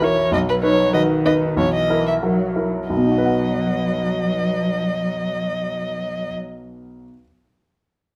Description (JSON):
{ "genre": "quick classical-period movement for piano trio", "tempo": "88-98 BPM", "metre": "2/4", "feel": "straight", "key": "B major", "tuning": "A4 = 440 Hz", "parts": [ { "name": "rich violin", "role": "melody", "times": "0.0-6.3 s", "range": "B4 to E5", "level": "-25 LUFS", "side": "equal", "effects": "none" }, { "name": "rich cello", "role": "second line", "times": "0.0-6.4 s", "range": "D#3 to F#3", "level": "-26 LUFS", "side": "equal", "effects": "none" }, { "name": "clear grand piano", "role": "accompaniment", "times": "0.0-7.2 s", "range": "B1 to F#5", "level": "-24 LUFS", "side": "equal", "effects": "none" } ], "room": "moderate large studio reverb, RT60 0.7 s", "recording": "none", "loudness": "-20 LUFS", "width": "mono", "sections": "0.0-2.9 A section; 2.9-5.6 B section", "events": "slowing down 0.0-2.9", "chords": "0.3 B; 1.6 F#7/B; 2.9 B", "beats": "| 0.31 0.93 | 1.57 2.23 | 2.91 3.58 | 4.25 4.92" }